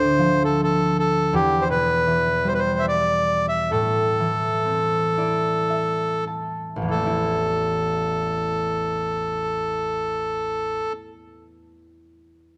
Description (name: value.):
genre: celtic folk, Celtic slow air.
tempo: 48-83 BPM.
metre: 3/4.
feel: rubato.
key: A minor.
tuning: A4 = 440 Hz.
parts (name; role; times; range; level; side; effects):
accordion; melody; 0.0-10.9 s; G4 to E5; -24 LUFS; equal; none.
concert harp; accompaniment; 0.0-11.1 s; A1 to A5; -27 LUFS; equal; none.
room: moderate scoring stage reverb, RT60 1.6 s.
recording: none.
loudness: -22 LUFS.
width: mono.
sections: 0.0-6.9 A section; 6.9-10.5 B section.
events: slowing down 1.3-6.9; harp fill 4.6-6.9.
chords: 0.0 Dm; 1.3 Em; 3.7 Am.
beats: 0.58 | 1.32 2.06 2.85 | 3.71 4.65 5.71 | 6.89 8.12 9.31.